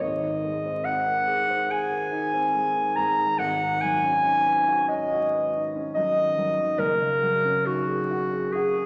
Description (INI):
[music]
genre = classical, impressionist duo for clarinet and grand piano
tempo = 70 BPM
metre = 4/4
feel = rubato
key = unclear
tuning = A4 = 440 Hz
[part]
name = mellow clarinet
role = melody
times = 0.0-8.9 s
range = Gb4 to Bb5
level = -25 LUFS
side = equal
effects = none
[part]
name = dark baby grand piano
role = accompaniment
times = 0.0-8.9 s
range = Gb1 to C#5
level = -32 LUFS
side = equal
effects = none
[sound]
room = wet scoring stage reverb, RT60 1.7 s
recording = vinyl crackle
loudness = -24 LUFS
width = mono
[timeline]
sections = 0.0-8.9 A section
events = none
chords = 0.0 Abadd9; 3.4 B69/G#; 6.8 Gb69